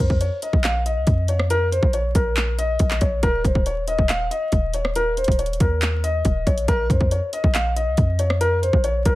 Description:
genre	hip hop, trap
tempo	139 BPM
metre	4/4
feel	half-time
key	Bb minor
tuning	A4 = 445 Hz
part	dark concert grand piano	melody	0.0-9.2 s	Bb4 to F5	-23 LUFS	left 1 dB	tape echo
part	clean 808-style bass	bass	0.0-9.2 s	Eb1 to F2	-22 LUFS	equal	none
part	trap drum kit	drums	0.0-9.2 s	handclaps, hi-hat, kick drum, rim click	-21 LUFS	equal	overdrive
room	little or no reverb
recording	vinyl crackle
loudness	-18 LUFS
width	side -17 dB against mid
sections	0.0-9.2 A section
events	none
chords	0.0 Bb5; 3.2 Eb5; 6.7 Bb5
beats	0.21 0.64 1.07 | 1.50 1.94 2.37 2.80 | 3.23 3.66 4.09 4.53 | 4.96 5.39 5.82 6.25 | 6.68 7.12 7.55 7.98 | 8.41 8.84

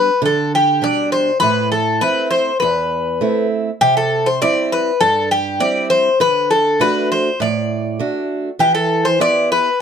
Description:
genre	greek folk, Greek bouzouki band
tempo	100 BPM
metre	4/4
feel	straight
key	unclear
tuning	A4 = 440 Hz
part	Greek bouzouki	melody	0.0-9.8 s	G4 to D5	-15 LUFS	left 2 dB	none
part	picked old ladder-braced acoustic guitar	accompaniment	0.0-9.7 s	E2 to G4	-20 LUFS	right 4 dB	none
room	moderate studio reverb, RT60 0.6 s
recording	dark, warm production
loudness	-14 LUFS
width	side -7 dB against mid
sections	0.0-9.8 A section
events	none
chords	0.0 G; 1.4 Am; 3.8 C; 6.2 D; 8.6 Em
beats	0.22 0.81 | 1.41 2.01 2.61 3.21 | 3.81 4.41 5.01 5.61 | 6.21 6.81 7.41 8.01 | 8.61 9.21 9.81

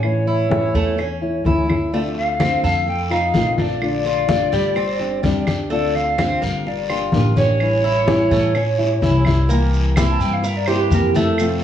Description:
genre	latin, Cuban son and guajira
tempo	127 BPM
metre	4/4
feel	straight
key	unclear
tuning	A4 = 442 Hz
part	silver concert flute	melody	0.0-11.1 s	Bb4 to A5	-22 LUFS	left 1 dB	slapback echo
part	nylon-string guitar	accompaniment	0.0-11.6 s	C3 to G4	-22 LUFS	left 3 dB	none
part	Cuban tres	arpeggios	0.0-11.6 s	G3 to Bb4	-24 LUFS	right 3 dB	none
part	upright bass	bass	0.0-11.6 s	G1 to A2	-21 LUFS	equal	none
part	claves	percussion	0.0-11.6 s	none	-30 LUFS	right 4 dB	none
part	congas	percussion	0.0-11.6 s	none	-23 LUFS	left 2 dB	none
part	guiro	percussion	1.9-11.6 s	none	-34 LUFS	left 1 dB	none
part	maracas	percussion	9.5-11.6 s	none	-36 LUFS	right 4 dB	none
room	moderate studio reverb, RT60 0.7 s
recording	worn, warbling old tape, cassette tape, warbly pitch drift, studio reverb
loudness	-16 LUFS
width	side -10 dB against mid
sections	0.0-9.5 A section; 9.5-11.6 B section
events	flute solo 9.5-11.6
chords	0.0 A; 1.9 Dm7; 2.9 F7; 3.8 Bbmaj7; 4.8 Gsus4; 5.7 Dm7; 6.7 Gm7; 7.6 A7; 9.5 C7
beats	| 0.03 0.51 0.98 1.45 | 1.93 2.40 2.87 3.35 | 3.82 4.29 4.77 5.24 | 5.71 6.19 6.66 7.13 | 7.61 8.08 8.55 9.03 | 9.50 9.97 10.44 10.92 | 11.39

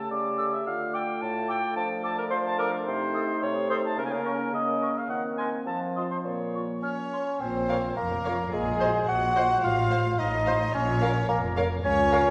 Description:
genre	cinematic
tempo	108 BPM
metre	2/4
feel	straight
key	Bb minor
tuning	A4 = 445 Hz
part	dark cor anglais	second line	0.0-12.2 s	Bb4 to A5	-33 LUFS	equal	none
part	warm bassoon	accompaniment	0.0-12.3 s	A2 to Gb4	-31 LUFS	equal	none
part	dark French horn section	sustained chords	0.0-12.3 s	F3 to C5	-36 LUFS	equal	none
part	clear clarinet	second line	0.4-12.3 s	F4 to Gb5	-37 LUFS	equal	none
part	silver concert flute	second line	0.4-12.2 s	Eb5 to F6	-40 LUFS	equal	none
part	rich chamber violin section	second line	6.8-12.3 s	Ab4 to Gb5	-37 LUFS	equal	none
part	rich studio double bass section	bass	7.4-12.3 s	F1 to Db2	-35 LUFS	equal	none
part	warm chamber cello section	bass	7.4-12.3 s	Db2 to Bb2	-34 LUFS	equal	none
part	rich studio violin section	melody	7.7-12.2 s	Eb5 to F5	-44 LUFS	equal	none
part	rich chamber viola section	accompaniment	7.7-12.2 s	Bb4 to Db5	-36 LUFS	equal	none
room	wet scoring stage reverb, RT60 1.8 s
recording	heard from further back in the room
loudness	-27 LUFS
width	mono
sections	0.0-7.4 A section; 7.4-12.3 B section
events	none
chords	0.0 A7/C#; 0.7 Dm; 1.8 Dm/F; 2.9 Cm6; 4.0 Bbm/Db; 5.1 Cm7b5/Eb; 5.7 F; 6.3 Bbm; 8.5 Cm7b5/Bb; 9.6 F/A; 10.7 Bbm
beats	0.11 | 0.66 1.21 | 1.76 2.31 | 2.87 3.42 | 3.98 4.54 | 5.10 5.67 | 6.25 6.83 | 7.41 7.97 | 8.52 9.08 | 9.64 10.19 | 10.74 11.29 | 11.85

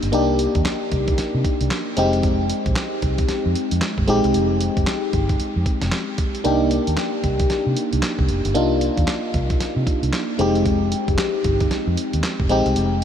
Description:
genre	R&B, new jack swing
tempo	114 BPM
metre	4/4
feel	swing 61% on 16ths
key	unclear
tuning	A4 = 441 Hz
part	FM electric piano	accompaniment	0.0-13.0 s	Ab3 to G4	-21 LUFS	left 1 dB	chorus, phaser
part	vintage muted fingered electric bass	bass	0.0-13.0 s	F1 to C3	-22 LUFS	right 1 dB	none
part	dusty soul sampler-style drum kit	drums	0.0-13.0 s	handclaps, hi-hat, kick drum, snare drum	-24 LUFS	right 1 dB	none
room	moderate huge ambient reverb, RT60 8.5 s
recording	dreamy mix soaked in reverb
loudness	-18 LUFS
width	side -9 dB against mid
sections	0.0-13.0 A section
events	kick muted 6.4-7.0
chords	0.0 Cm9; 2.0 Fm9; 6.4 Cm9; 10.4 Fm9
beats	| 0.13 0.66 1.18 1.71 | 2.23 2.76 3.29 3.81 | 4.34 4.87 5.39 5.92 | 6.45 6.97 7.50 8.03 | 8.55 9.08 9.60 10.13 | 10.66 11.18 11.71 12.23 | 12.76

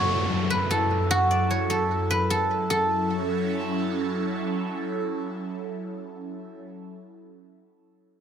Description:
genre	hip hop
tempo	150 BPM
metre	4/4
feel	half-time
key	F# minor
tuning	A4 = 440 Hz
part	guzheng	melody	0.0-4.9 s	F#4 to G#5	-24 LUFS	equal	tape echo
part	airy breathy pad	sustained chords	0.0-6.7 s	F#2 to A4	-27 LUFS	right 1 dB	chorus, phaser
part	downlifter	sound effects	0.0-2.7 s	none	-33 LUFS	equal	none
room	light reverb, digital ambience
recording	dense, heavily limited modern master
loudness	-23 LUFS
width	side -8 dB against mid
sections	0.0-2.7 A section; 2.7-5.9 B section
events	none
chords	0.0 F#m7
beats	0.30 0.70 | 1.10 1.50 1.90 2.30 | 2.70 3.10 3.50 3.90 | 4.30 4.70 5.10 5.50

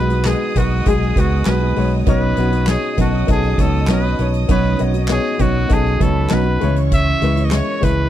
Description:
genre	piano-driven pop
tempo	99 BPM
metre	4/4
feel	straight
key	unclear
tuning	A4 = 440 Hz
part	bright trumpet	melody	0.0-8.1 s	F#4 to E5	-23 LUFS	equal	slapback echo
part	warm studio violin section	second line	0.0-8.1 s	B4 to D#6	-32 LUFS	right 2 dB	none
part	clear upright piano	accompaniment	0.0-8.1 s	B2 to D#5	-21 LUFS	left 6 dB	none
part	fingerpicked steel-string acoustic guitar	riff	0.0-8.1 s	B2 to G#4	-24 LUFS	right 12 dB	none
part	fingered electric bass	bass	0.0-8.1 s	B1 to C#2	-18 LUFS	equal	none
part	soft-mallet drum kit	drums	0.1-8.0 s	handclaps, hi-hat, kick drum, snare drum	-20 LUFS	equal	none
room	little or no reverb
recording	dry, close 1970s-style studio recording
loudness	-14 LUFS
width	side -12 dB against mid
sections	0.0-8.1 A section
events	none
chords	0.0 G#m7/B; 2.1 Badd9; 6.6 C#m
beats	0.26 0.86 1.47 | 2.08 2.68 3.29 3.89 | 4.50 5.10 5.71 6.31 | 6.92 7.53

